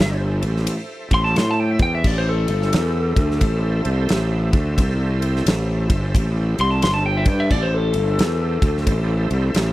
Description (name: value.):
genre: blues rock power trio and southern rock.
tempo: 88 BPM.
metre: 4/4.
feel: swing 64% on 8ths.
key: A minor.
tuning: A4 = 442 Hz.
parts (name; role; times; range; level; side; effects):
lightly driven lead guitar; melody; 0.0-9.7 s; A4 to C6; -23 LUFS; left 2 dB; slapback echo.
overdriven tonewheel organ; sustained chords; 0.0-9.7 s; A4 to E5; -32 LUFS; right 4 dB; slow rotary speaker, chorus vibrato.
fuzz fingered electric bass; bass; 0.0-9.7 s; G1 to A2; -20 LUFS; equal; overdrive.
big rock drum kit; drums; 0.0-9.7 s; crash cymbal, kick drum, ride cymbal, snare drum; -22 LUFS; equal; none.
room: little or no reverb.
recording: dry, close 1970s-style studio recording.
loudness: -17 LUFS.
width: side -16 dB against mid.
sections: 0.0-9.7 A section.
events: lead electric guitar solo 0.0-9.7.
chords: 0.0 Am.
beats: 0.00 0.68 1.37 | 2.05 2.73 3.42 4.10 | 4.78 5.46 6.14 6.83 | 7.51 8.19 8.87 9.55.